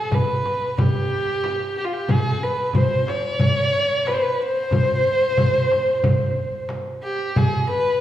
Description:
Persian modal ensemble; 91 BPM; 4/4; straight; C dastgah chahargah; A4 = 441 Hz
dark violin; melody; 0.0-8.0 s; F4 to Db5+44c; -21 LUFS; equal
frame drum; percussion; 0.1-7.5 s; -23 LUFS; left 1 dB
tombak; percussion; 0.1-7.5 s; -26 LUFS; right 1 dB
wet recital hall reverb, RT60 1.6 s; heard from further back in the room, studio reverb; -18 LUFS; side -12 dB against mid
0.0-7.4 A section

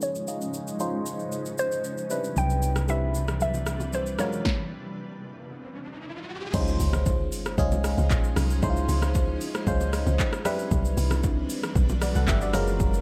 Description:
amapiano; 115 BPM; 4/4; straight; A4 = 440 Hz
hollow square pluck; melody; 0.0-6.0 s; C5 to G5; -33 LUFS; equal; chorus, low-pass filter
barking FM electric piano; accompaniment; 0.0-13.0 s; G3 to Gb5; -33 LUFS; equal; phaser, low-pass filter
granular cloud pad; sustained chords; 0.0-13.0 s; C3 to F5; -38 LUFS; equal; built-in reverb, sidechain pumping, low-pass filter
deep house drum kit; drums; 0.0-13.0 s; crash cymbal, handclaps, hi-hat, kick drum, rim click, shaker, snare drum; -31 LUFS; equal; overdrive
hollow-body short-scale fingered electric bass; bass; 2.4-4.2 s; C2; -29 LUFS; equal
congas and bongos; percussion; 2.4-12.9 s; -37 LUFS; equal
riser and impact; sound effects; 5.3-8.6 s; -39 LUFS; equal
deep log drum bass; bass; 6.5-13.0 s; Gb1 to Db2; -28 LUFS; equal
little or no reverb; dark, warm production; -26 LUFS; mono
0.0-6.5 A section; 6.5-13.0 B section
filter sweep 0.0-6.5; stop 4.5-6.5; riser 5.3-6.5; drop 6.5-13.0; impact 6.5-8.6
0.0 Dbmaj9; 2.1 Cmaj9; 4.2 Gbmaj9; 6.5 Dbmaj9; 10.5 Cmaj9

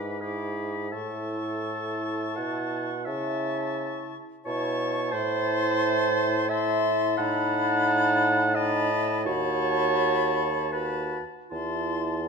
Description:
classical, slow romantic movement for wind quintet; 74-91 BPM; 3/4; rubato; A major; A4 = 435 Hz
bright silver concert flute; melody; 0.0-12.3 s; B5 to D6; -34 LUFS; left 12 dB
warm oboe; second line; 0.0-12.3 s; A5 to B5; -33 LUFS; left 5 dB
clear French horn; accompaniment; 0.0-12.3 s; D#4 to F#4; -33 LUFS; left 2 dB
warm clarinet; accompaniment; 0.0-12.3 s; F4 to F#5; -28 LUFS; right 5 dB
dark bassoon; bass; 0.0-12.3 s; D#2 to C#3; -31 LUFS; right 1 dB
moderate scoring stage reverb, RT60 1.5 s; -24 LUFS; side -5 dB against mid
0.0-12.3 A section
0.0 E7/G#; 0.9 A; 3.1 A/C#; 5.1 Am; 7.2 B7/A; 9.3 B7/D#; 11.5 Am/E

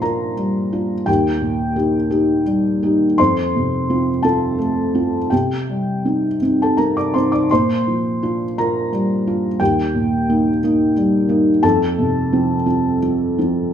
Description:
neoclassical minimalist piano; 53-59 BPM (dotted quarters); 6/8; rubato; Bb major; A4 = 440 Hz
felt-muted upright piano; solo; 0.0-13.7 s; Eb2 to D6; -15 LUFS; equal
moderate large studio reverb, RT60 0.9 s; band playing live in one room; -15 LUFS; side -9 dB against mid
0.0-13.7 A section
0.0 Bb6; 1.1 Eb; 3.2 F; 5.3 Cm; 7.5 Bb6; 9.6 Eb; 11.6 F

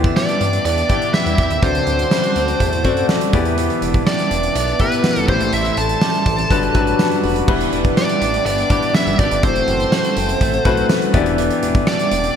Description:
1980s-style pop; 123 BPM; 4/4; straight; A4 = 439 Hz
warm grand piano; accompaniment; 0.0-12.4 s; G2 to E5; -21 LUFS; left 5 dB
glass harmonica; sustained chords; 0.0-12.4 s; A4 to D6; -27 LUFS; right 1 dB
direct-recorded clean electric guitar; riff; 0.0-12.4 s; E3 to G4; -27 LUFS; right 7 dB; lush chorus, digital delay
chorused synth bass; bass; 0.0-12.3 s; E1 to G2; -23 LUFS; equal
big rock drum kit; drums; 0.0-12.4 s; crash cymbal, hi-hat, kick drum, snare drum, tambourine; -19 LUFS; right 1 dB; gated reverb
bluesy overdriven lead guitar; melody; 0.2-12.4 s; B4 to A5; -20 LUFS; right 1 dB; distortion, digital delay
rich studio violin section; second line; 0.2-12.3 s; B3 to A4; -30 LUFS; right 1 dB
moderate lush hall reverb, RT60 2.0 s; bright 1980s-style digital production; -14 LUFS; side -8 dB against mid
0.0-7.5 A section; 7.5-12.4 A section
0.0 Em7; 1.6 D7; 3.3 Em7; 5.3 Am7; 6.5 Gmaj7; 7.5 Em7; 9.4 F#m7b5; 11.1 Em7

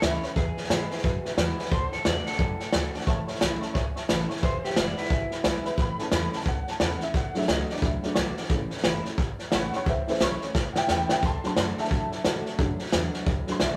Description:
rockabilly; 177 BPM; 4/4; swing 62% on 8ths; A major; A4 = 439 Hz
electric guitar through a small old amp; melody; 0.0-5.6 s; E4 to E5; -35 LUFS; equal; spring reverb
honky-tonk upright piano; accompaniment; 0.0-13.8 s; E3 to C6; -34 LUFS; equal
picked steel-string acoustic guitar; accompaniment; 0.0-13.8 s; E2 to F#4; -38 LUFS; equal
upright bass; bass; 0.0-13.8 s; E1 to A2; -36 LUFS; equal
vintage drum kit; drums; 0.0-13.7 s; hi-hat, kick drum, snare drum; -28 LUFS; equal
moderate studio reverb, RT60 0.7 s; rough rehearsal-room recording; -27 LUFS; mono
0.0-5.8 A section; 5.8-13.8 B section
honky-tonk piano solo 5.8-13.8; drum fill 10.5-11.2
0.4 E; 1.7 D; 3.1 A; 4.4 E; 5.8 A; 7.1 D; 8.5 A; 11.2 D

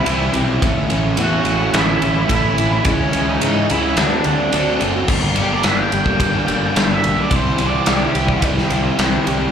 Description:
quiet-loud alternative rock; 108 BPM; 4/4; straight; A4 = 440 Hz
octave-fuzz lead guitar; melody; 0.0-8.4 s; C#4 to G5; -22 LUFS; right 2 dB; distortion, slapback echo
fingerpicked steel-string acoustic guitar; arpeggios; 0.0-9.5 s; G2 to G4; -25 LUFS; right 2 dB; slapback echo
fuzz guitar; riff; 0.0-9.5 s; G2 to E4; -24 LUFS; right 9 dB; distortion, slapback echo
overdriven semi-hollow guitar; riff; 0.0-9.5 s; G2 to F#4; -23 LUFS; left 9 dB; slapback echo
fuzz fingered electric bass; bass; 0.1-9.4 s; F#1 to G#2; -22 LUFS; equal; overdrive
big rock drum kit; drums; 0.1-9.4 s; crash cymbal, kick drum, ride cymbal, snare drum; -19 LUFS; equal
studio reverb; live gig heard through the venue's PA, club reverb; -14 LUFS; side -8 dB against mid
0.0-5.1 A section; 5.1-9.5 B section
half time 0.0-5.1; lead electric guitar solo 5.1-9.5
0.0 C; 0.6 A; 2.9 C#m; 4.0 D7; 5.1 Gm; 7.3 C

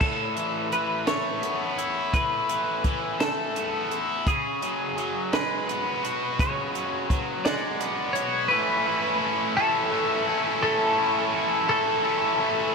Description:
indie rock; 56 BPM (dotted quarters); 6/8; straight; A major; A4 = 440 Hz
twelve-string electric guitar; melody; 0.0-12.7 s; G#4 to F#5; -26 LUFS; equal; lush chorus, tape echo
biting overdriven guitar; riff; 0.0-12.7 s; A2 to F#4; -26 LUFS; left 1 dB; spring reverb
compact cocktail drum kit; drums; 0.0-8.3 s; crash cymbal, hi-hat, kick drum, snare drum; -30 LUFS; right 1 dB
wet lush hall reverb, RT60 3.2 s; dreamy mix soaked in reverb; -23 LUFS; side -4 dB against mid
0.0-8.5 A section; 8.5-12.7 B section
0.0 Asus2; 4.3 C#7sus4; 8.5 A

